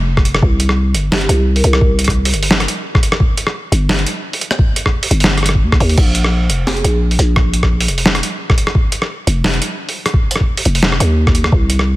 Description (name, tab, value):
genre	half-time drum and bass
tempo	173 BPM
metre	4/4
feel	swing 54% on 16ths, half-time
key	unclear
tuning	A4 = 440 Hz
part	growling 808-style bass	bass	0.0-12.0 s	F1 to Eb2	-14 LUFS	equal	none
part	boom bap sampler-style drum kit	drums	0.2-11.9 s	crash cymbal, hi-hat, rim click, snare drum	-16 LUFS	equal	soft clipping on snare
part	electronic kick drum	drums	0.2-11.6 s	none	-14 LUFS	equal	none
part	vibraphone with soft mallets	melody	1.1-1.9, 6.7-6.9 s	G4 to Bb4	-23 LUFS	right 1 dB	dub echo
room	light reverb, digital ambience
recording	dense, heavily limited modern master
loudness	-12 LUFS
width	side -18 dB against mid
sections	0.0-12.0 A section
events	none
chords	0.4 C5; 6.0 Bb5